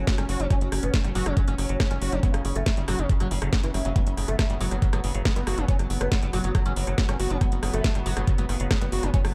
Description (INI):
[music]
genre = psychedelic trance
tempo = 139 BPM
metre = 4/4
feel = straight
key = unclear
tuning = A4 = 440 Hz
[part]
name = oud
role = melody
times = 0.0-9.3 s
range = C#3 to C#4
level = -34 LUFS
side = equal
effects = phaser, sidechain pumping, digital delay
[part]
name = bubbling stepped-filter texture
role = sustained chords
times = 0.0-9.3 s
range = F#3 to C#4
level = -37 LUFS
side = equal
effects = chorus, built-in reverb, sidechain pumping
[part]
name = tight sequencer bass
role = bass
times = 0.0-9.3 s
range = F#1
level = -30 LUFS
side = equal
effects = none
[part]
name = drum and bass drum kit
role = drums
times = 0.1-9.3 s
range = hi-hat, rim click, snare drum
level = -34 LUFS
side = equal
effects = none
[part]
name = electronic kick drum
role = drums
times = 0.1-9.2 s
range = none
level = -25 LUFS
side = equal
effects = none
[part]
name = screaming distorted acid line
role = riff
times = 0.2-9.2 s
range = E3 to F#4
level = -37 LUFS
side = equal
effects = distortion, chorus, sidechain pumping, digital delay
[sound]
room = little or no reverb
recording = dark, warm production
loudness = -25 LUFS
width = mono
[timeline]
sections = 0.0-9.3 A section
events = none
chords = 0.0 F#5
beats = 0.07 | 0.51 0.94 1.37 1.80 | 2.23 2.66 3.10 3.53 | 3.96 4.39 4.82 5.25 | 5.68 6.12 6.55 6.98 | 7.41 7.84 8.28 8.71 | 9.14